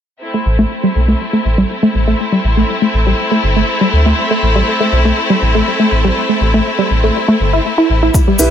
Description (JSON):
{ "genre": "progressive house", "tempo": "121 BPM", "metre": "4/4", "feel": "straight", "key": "A minor", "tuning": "A4 = 439 Hz", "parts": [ { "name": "bright symphonic string section", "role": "sustained chords", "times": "0.2-8.5 s", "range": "G3 to E4", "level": "-16 LUFS", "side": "left 1 dB", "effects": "sidechain pumping, low-pass filter" }, { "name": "wide unison pluck", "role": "arpeggios", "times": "0.3-8.3 s", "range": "G3 to E4", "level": "-15 LUFS", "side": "equal", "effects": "sidechain pumping, ping-pong delay" }, { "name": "round analog bass", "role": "bass", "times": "0.5-8.5 s", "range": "G1 to D2", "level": "-14 LUFS", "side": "equal", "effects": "sidechain pumping" }, { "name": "electronic kick drum", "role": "drums", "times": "8.1-8.2 s", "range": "none", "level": "-12 LUFS", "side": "equal", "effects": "none" }, { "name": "cabasa", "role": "percussion", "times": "8.1-8.5 s", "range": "none", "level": "-18 LUFS", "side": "left 3 dB", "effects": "none" }, { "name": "felt-muted upright piano", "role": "stabs", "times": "8.4-8.5 s", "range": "E4 to B4", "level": "-11 LUFS", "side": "right 2 dB", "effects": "sidechain pumping" }, { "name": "electronic hi-hat", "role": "drums", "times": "8.4-8.5 s", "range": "none", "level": "-20 LUFS", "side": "left 3 dB", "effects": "none" } ], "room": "light reverb, small room ambience", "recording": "none", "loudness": "-11 LUFS", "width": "side -9 dB against mid", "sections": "0.2-8.5 A section", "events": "filter sweep on analog synth bass 0.2-8.5; filter sweep on synth pluck 0.2-8.5", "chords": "0.2 Am" }